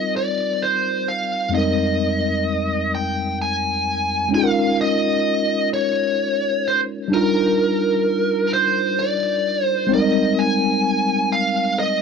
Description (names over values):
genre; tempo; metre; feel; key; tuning
R&B; 43 BPM (dotted quarters); 6/8; straight; unclear; A4 = 438 Hz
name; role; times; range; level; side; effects
biting lead guitar; melody; 0.0-12.0 s; Bb4 to Ab5; -20 LUFS; right 1 dB; overdrive
mellow tine electric piano; accompaniment; 0.0-12.0 s; F2 to Bb4; -21 LUFS; left 1 dB; medium stereo tremolo
room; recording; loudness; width
little or no reverb; dry, close 1970s-style studio recording; -17 LUFS; side -6 dB against mid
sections
0.0-4.3 A section; 4.3-12.0 B section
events
none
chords
0.0 Eb69; 1.5 Fm11; 4.3 Db69; 7.1 Ebmaj9; 9.9 Abmaj9